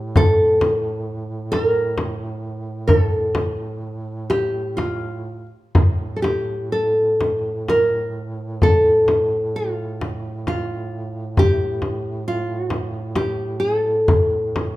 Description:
caucasian folk, Caucasian lament; 61-68 BPM; 3/4; rubato; A4 = 439 Hz
nylon-string guitar; melody; 0.0-14.8 s; F4 to Bb4; -19 LUFS; equal
mellow duduk; drone; 0.0-14.8 s; A2; -29 LUFS; right 2 dB
frame drum; percussion; 0.2-14.8 s; -19 LUFS; equal
moderate recital hall reverb, RT60 1.4 s; minimal, uncompressed stereo recording; -18 LUFS; side -16 dB against mid
0.0-14.8 A section

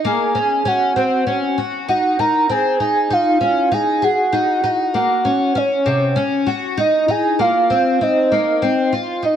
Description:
dream pop; 98 BPM; 4/4; straight; Eb dorian; A4 = 440 Hz
fingerpicked twelve-string acoustic guitar; arpeggios; 0.0-9.4 s; C3 to Ab4; -19 LUFS; left 3 dB; lush chorus, plate reverb, ping-pong delay
soft octave-layered synth lead; melody; 0.1-9.4 s; Db5 to Bb5; -17 LUFS; right 2 dB; chorus, tremolo, plate reverb, ping-pong delay
wet small room reverb, RT60 0.6 s; dark, warm production; -15 LUFS; side -9 dB against mid
0.0-9.2 A section
0.0 Ebm7 (rootless); 1.9 Ab; 4.3 Ebm7; 6.8 F5

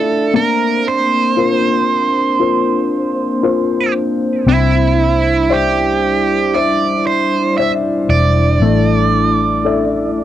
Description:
pop; 58 BPM; 4/4; straight; A4 = 441 Hz
smooth overdriven lead guitar; melody; 0.0-10.2 s; E4 to E5; -16 LUFS; right 5 dB; cassette tape
warm baby grand piano; accompaniment; 0.0-10.2 s; D3 to E5; -18 LUFS; left 6 dB; cassette tape
glass harmonica; sustained chords; 0.0-10.2 s; G3 to E5; -18 LUFS; left 1 dB; cassette tape
vintage muted fingered electric bass; bass; 4.5-10.2 s; E1 to C2; -16 LUFS; equal
moderate booth ambience, RT60 0.3 s; home recording on cassette; -12 LUFS; side -12 dB against mid
0.0-10.2 A section
0.3 Bbsus2; 4.5 Cadd9; 8.6 Asus4

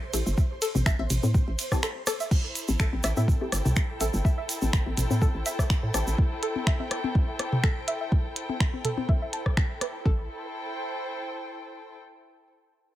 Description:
minimal techno; 124 BPM; 4/4; swing 54% on 16ths; A minor; A4 = 440 Hz
flickering grainy texture; texture; 0.0-10.1 s; A4 to C5; -41 LUFS; equal; built-in reverb, sidechain pumping
filtered dub chord stab; stabs; 0.1-6.1 s; C4 to A4; -37 LUFS; left 3 dB; phaser, ensemble chorus, dub echo
hollow knocking FM bass; bass; 0.1-6.2, 10.1-10.3 s; G1 to A2; -27 LUFS; equal; sidechain pumping
minimal click drum kit; drums; 0.1-9.9 s; crash cymbal, finger snaps, hi-hat, ride cymbal; -32 LUFS; right 1 dB
egg shaker; percussion; 0.1-6.2 s; -36 LUFS; right 2 dB
electronic kick drum; drums; 0.4-10.2 s; -24 LUFS; equal
string-like resonator pluck; riff; 0.6-10.3 s; A4 to A5; -35 LUFS; right 1 dB; chorus, sidechain pumping, digital delay
booming analog drum machine; percussion; 0.8-9.9 s; rim click, toms; -31 LUFS; left 3 dB
muted chamber string section; texture; 2.3-12.0 s; E4 to G5; -36 LUFS; left 1 dB; sidechain pumping
digital ambience; -24 LUFS; side -14 dB against mid
0.0-2.3 A section; 2.3-10.1 B section; 10.1-12.0 C section
drop 0.0-2.3; break 1.8-2.3; filter sweep on synth pluck 2.3-10.1
0.0 Am7

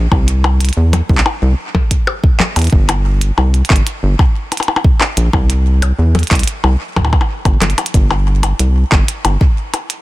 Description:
IDM; 92 BPM; 4/4; straight; A4 = 440 Hz
rubbery square bass; bass; 0.0-9.4 s; G1 to E2; -12 LUFS; equal
electronic kick drum; drums; 0.1-9.5 s; -12 LUFS; equal
glitchy drum kit; drums; 0.1-10.0 s; handclaps, hi-hat, percussion blips; -17 LUFS; left 2 dB; digital delay
digital ambience; dense, heavily limited modern master; -11 LUFS; side -18 dB against mid
0.0-7.9 A section; 7.9-10.0 B section
drum fill 7.6-7.9

